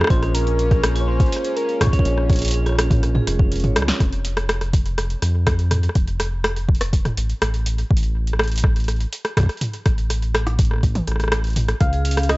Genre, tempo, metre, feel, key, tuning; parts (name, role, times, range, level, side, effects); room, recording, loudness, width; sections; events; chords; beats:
IDM; 123 BPM; 4/4; straight; A4 = 440 Hz
soft struck synth lead; melody; 0.0-3.5, 11.8-12.4 s; G#4 to E#5; -26 LUFS; left 1 dB; chorus, tape echo
phased analog pad; sustained chords; 0.0-4.0 s; G#3 to Db4; -32 LUFS; equal; phaser, chorus, vintage 12-bit sampler grit
vibraphone with hard mallets; arpeggios; 0.0-4.0, 11.9-12.4 s; Ab3 to Db5; -28 LUFS; right 3 dB; analog delay
round analog bass; bass; 0.0-12.4 s; F1 to F2; -21 LUFS; equal
electro analog drum machine; drums; 0.0-12.4 s; hi-hat, rim click, snare drum, toms; -23 LUFS; equal
electronic kick drum; drums; 0.1-11.9 s; -17 LUFS; equal
digital ambience; dry, gritty hardware recording, cassette tape, nothing above 7.8 kHz; -17 LUFS; side -21 dB against mid
0.0-4.0 A section; 4.0-12.4 B section
drum fill 3.8
0.1 Bbm7; 4.0 F; 7.9 N.C.; 11.8 C#
| 0.10 0.59 1.08 1.56 | 2.05 2.54 3.03 3.52 | 4.00 4.49 4.98 5.47 | 5.95 6.44 6.93 7.42 | 7.91 8.39 8.88 9.37 | 9.86 10.35 10.83 11.32 | 11.81 12.30